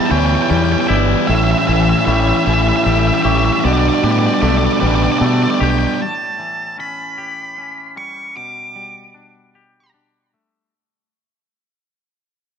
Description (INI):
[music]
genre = rock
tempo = 51 BPM (dotted quarters)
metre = 6/8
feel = straight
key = unclear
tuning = A4 = 445 Hz
[part]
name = octave-fuzz lead guitar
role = melody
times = 0.0-9.9 s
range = D5 to D6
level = -20 LUFS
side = right 1 dB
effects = distortion, analog delay
[part]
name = electric guitar through a small old amp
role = arpeggios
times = 0.0-6.0 s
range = A4 to C#6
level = -27 LUFS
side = right 3 dB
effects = spring reverb, analog delay
[part]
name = twangy electric guitar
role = arpeggios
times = 0.0-10.7 s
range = E2 to G4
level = -24 LUFS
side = left 4 dB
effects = spring reverb, analog delay
[part]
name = raw garage guitar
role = riff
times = 0.0-6.0 s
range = A2 to E4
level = -19 LUFS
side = right 14 dB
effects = overdrive
[part]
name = thick fuzz guitar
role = riff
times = 0.0-6.0 s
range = A2 to E4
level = -20 LUFS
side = left 12 dB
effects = distortion
[part]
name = growling fingered electric bass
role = bass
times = 0.1-5.8 s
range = G1 to B2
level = -17 LUFS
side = left 1 dB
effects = overdrive
[sound]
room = light reverb, digital ambience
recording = none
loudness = -13 LUFS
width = side -7 dB against mid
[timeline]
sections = 0.0-6.0 A section; 6.0-10.7 B section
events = fade-out 6.0-10.7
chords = 0.0 Em7; 1.3 A7; 3.6 Gadd9/B; 6.0 A7; 8.4 Gadd9/B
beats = 0.11 | 1.29 2.46 | 3.64 4.82 | 6.00 7.19 | 8.37 9.55